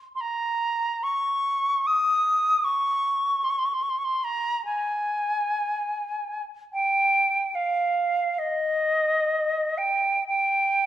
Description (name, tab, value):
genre	classical, free, expressive piece for unaccompanied flute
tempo	61-78 BPM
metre	4/4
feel	rubato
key	Ab major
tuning	A4 = 441 Hz
part	silver concert flute	solo	0.1-10.9 s	Eb5 to Eb6	-22 LUFS	equal	none
room	moderate recital hall reverb, RT60 1.5 s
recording	none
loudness	-22 LUFS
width	side -12 dB against mid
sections	0.0-10.9 A section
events	none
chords	none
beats	| 0.22 1.04 1.87 2.65 | 3.45 4.25 5.07 5.90 | 6.74 7.55 8.40 9.30 | 10.27